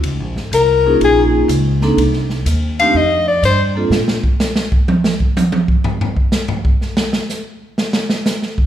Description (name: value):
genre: jazz, small-group swing and bop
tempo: 124 BPM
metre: 4/4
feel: swing 68% on 8ths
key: unclear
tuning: A4 = 439 Hz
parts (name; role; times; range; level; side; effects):
- upright bass; bass; 0.0-4.2 s; Ab1 to Bb2; -17 LUFS; equal; none
- open jazz drum kit; drums; 0.0-8.7 s; hi-hat, kick drum, ride cymbal, snare drum, toms; -17 LUFS; right 1 dB; none
- clear soprano saxophone; melody; 0.5-3.6 s; Ab4 to F5; -14 LUFS; left 4 dB; none
- vibraphone with medium hard mallets; accompaniment; 0.9-3.9 s; A3 to A4; -18 LUFS; right 2 dB; none
room: moderate recital hall reverb, RT60 1.5 s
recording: recorded in a church or concert hall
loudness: -13 LUFS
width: side -11 dB against mid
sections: 0.0-8.7 A section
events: soprano saxophone solo 0.0-8.7; drum solo 3.9-8.7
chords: 0.0 Db69; 2.0 Cmadd9; 2.9 F69; 3.9 N.C.